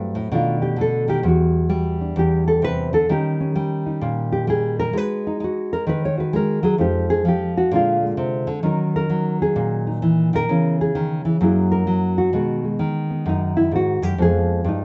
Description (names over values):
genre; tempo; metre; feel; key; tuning
solo jazz; 130 BPM; 4/4; swing 66% on 8ths; G# minor from 4.9 s; A4 = 439 Hz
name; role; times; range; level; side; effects
nylon-string guitar; solo; 0.0-14.8 s; E2 to C#5; -20 LUFS; equal; none
room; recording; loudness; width
light reverb; nothing above 8.0 kHz; -20 LUFS; mono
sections
0.0-4.9 A section; 4.9-14.8 A section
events
nylon-string guitar solo 0.0-14.8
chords
0.3 B7alt; 1.2 Em9; 3.1 D#7; 4.9 G#5; 6.8 Fm7; 7.7 A#7; 8.6 D#m7; 10.5 C#m7; 11.4 F#9; 12.3 B6; 14.2 Fdim